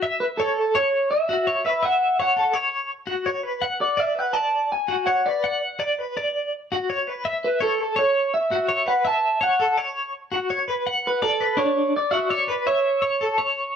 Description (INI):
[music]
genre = rock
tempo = 166 BPM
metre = 5/4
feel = straight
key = unclear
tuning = A4 = 438 Hz
[part]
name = twelve-string electric guitar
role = arpeggios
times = 0.0-13.7 s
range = D4 to F#5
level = -23 LUFS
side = left 1 dB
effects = tremolo
[part]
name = electric guitar through a small old amp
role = melody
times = 0.2-13.8 s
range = A4 to A5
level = -21 LUFS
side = right 1 dB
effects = none
[sound]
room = moderate stone room reverb, RT60 1.0 s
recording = band playing live in one room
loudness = -20 LUFS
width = side -7 dB against mid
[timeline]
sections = 0.0-13.8 A section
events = none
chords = 0.0 F#7(no3); 3.6 Bm; 7.2 F#7(no3); 10.8 Bm7; 12.7 A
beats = | 0.03 0.39 0.75 1.11 1.47 | 1.83 2.19 2.55 2.91 3.27 | 3.63 3.99 4.35 4.71 5.07 | 5.43 5.79 6.16 6.52 6.88 | 7.24 7.60 7.96 8.32 8.68 | 9.04 9.40 9.77 10.13 10.49 | 10.85 11.21 11.57 11.93 12.29 | 12.65 13.02 13.38 13.74